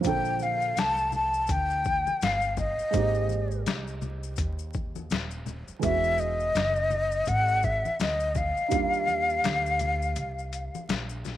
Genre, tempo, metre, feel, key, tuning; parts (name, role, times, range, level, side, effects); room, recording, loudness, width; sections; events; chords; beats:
hip hop, jazz-hop; 83 BPM; 4/4; swing 60% on 16ths; A4 = 441 Hz
dark upright piano; accompaniment; 0.0-11.4 s; D3 to A4; -33 LUFS; right 9 dB
upright bass; bass; 0.0-11.4 s; Eb1 to Eb2; -32 LUFS; equal
boom bap sampler-style drum kit; drums; 0.0-11.4 s; hi-hat, kick drum, shaker, snare drum; -32 LUFS; left 2 dB; overdrive
maracas and congas; percussion; 0.0-11.4 s; -42 LUFS; left 5 dB
breathy concert flute; melody; 0.1-10.9 s; D#5 to A5; -26 LUFS; left 2 dB
moderate spring reverb, RT60 2.5 s; 1960s-style stereo, vinyl crackle; -25 LUFS; side -12 dB against mid
0.0-11.4 A section
break 10.2-11.4
0.0 Bbmaj9; 2.9 Abmaj9; 5.8 Emaj9; 8.7 Ebmaj9
| 0.04 0.77 1.49 2.21 | 2.94 3.66 4.38 5.11 | 5.83 6.55 7.27 8.00 | 8.72 9.44 10.17 10.89